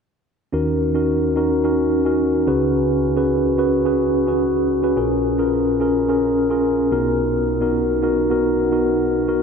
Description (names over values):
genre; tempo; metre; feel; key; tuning
pop; 108 BPM; 4/4; straight; Eb minor; A4 = 440 Hz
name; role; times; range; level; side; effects
mellow tine electric piano; solo; 0.5-9.4 s; Bb1 to Cb5; -16 LUFS; equal; medium stereo tremolo, ping-pong delay
room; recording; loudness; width
wet cathedral reverb, RT60 7.3 s; dreamy mix soaked in reverb; -16 LUFS; side -6 dB against mid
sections
0.5-9.4 A section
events
none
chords
0.5 Ebm7; 2.5 Db7sus4; 5.0 Bbm7; 6.9 Bmaj7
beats
| 0.53 1.09 1.64 2.20 | 2.75 3.31 3.86 4.42 | 4.97 5.53 6.09 6.64 | 7.20 7.75 8.31 8.86 | 9.42